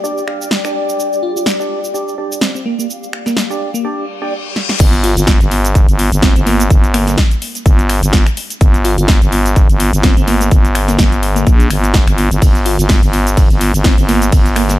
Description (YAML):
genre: bass house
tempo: 126 BPM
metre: 4/4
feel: swing 56% on 16ths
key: G minor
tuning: A4 = 442 Hz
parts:
  - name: percussive organ stab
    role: stabs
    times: 0.0-4.3 s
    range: D4 to F5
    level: -22 LUFS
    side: right 3 dB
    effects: lush chorus, vintage 12-bit sampler grit, sidechain pumping, digital delay
  - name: big-room dance drum kit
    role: drums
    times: 0.0-14.8 s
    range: crash cymbal, finger snaps, hi-hat, ride cymbal, shaker, snare drum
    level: -19 LUFS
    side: equal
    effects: none
  - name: granular cloud pad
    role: texture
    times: 0.0-3.8 s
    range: G4 to G5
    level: -22 LUFS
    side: left 3 dB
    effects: built-in reverb, sidechain pumping
  - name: bell-like FM electric piano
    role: melody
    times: 1.2-14.8 s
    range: Bb3 to F4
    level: -20 LUFS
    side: right 1 dB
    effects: chorus, digital delay
  - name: reverse cymbal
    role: sound effects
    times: 4.1-4.8 s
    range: none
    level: -23 LUFS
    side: left 7 dB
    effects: none
  - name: growling FM bass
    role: bass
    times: 4.8-14.8 s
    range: G1 to Bb1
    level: -13 LUFS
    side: equal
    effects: sidechain pumping
  - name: electronic kick drum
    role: drums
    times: 4.8-14.4 s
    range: none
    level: -10 LUFS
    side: equal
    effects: none
room: little or no reverb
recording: none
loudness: -10 LUFS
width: side -15 dB against mid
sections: 0.0-4.8 A section; 4.8-14.8 B section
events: reverse cymbal 4.1-4.8; drum fill 4.6; drop 4.8-14.8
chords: 0.0 G5; 4.8 N.C.